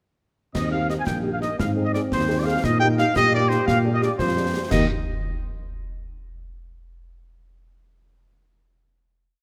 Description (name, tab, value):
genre	military-style march for wind band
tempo	115 BPM (dotted quarters)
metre	6/8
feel	straight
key	Eb major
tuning	A4 = 440 Hz
part	dark trumpet section	melody	0.5-4.9 s	C5 to Ab5	-26 LUFS	equal	none
part	warm euphonium	second line	0.5-4.5 s	Bb3 to G4	-30 LUFS	equal	none
part	dark tuba	bass	0.5-4.9 s	Bb1 to Bb2	-27 LUFS	equal	none
part	concert snare drum, clash cymbals and concert bass drum	drums	0.6-4.9 s	none	-32 LUFS	equal	none
part	dark French horn section	accompaniment	0.7-4.9 s	Ab3 to Ab4	-33 LUFS	equal	none
room	moderate concert hall reverb, RT60 2.2 s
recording	none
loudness	-22 LUFS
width	mono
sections	0.5-4.7 A section; 4.7-5.7 final chord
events	none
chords	0.5 Eb; 1.6 Ab; 2.6 Eb/Bb; 3.7 Bb13; 4.7 Eb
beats	| 0.54 1.06 | 1.59 2.11 | 2.63 3.15 | 3.67 4.19 | 4.71